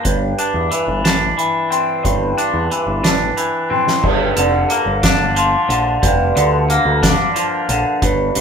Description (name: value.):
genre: psychedelic rock.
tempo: 60 BPM (dotted quarters).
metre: 6/8.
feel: straight.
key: G dorian.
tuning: A4 = 441 Hz.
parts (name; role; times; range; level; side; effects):
twangy electric guitar; riff; 0.0-8.4 s; G2 to D4; -16 LUFS; equal; phaser.
growling picked electric bass; bass; 0.0-8.4 s; F1 to E2; -21 LUFS; equal; overdrive.
soft-mallet drum kit; drums; 0.0-8.4 s; crash cymbal, hi-hat, kick drum, snare drum, toms; -19 LUFS; right 1 dB; none.
room: moderate stone room reverb, RT60 0.9 s.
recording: band playing live in one room.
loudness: -14 LUFS.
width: side -6 dB against mid.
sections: 0.0-4.0 A section; 4.0-8.4 B section.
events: drum fill 3.7-4.0.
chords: 0.1 Cadd9/G; 4.0 Gm7.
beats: | 0.05 1.05 | 2.05 3.04 | 4.04 5.04 | 6.03 7.03 | 8.03.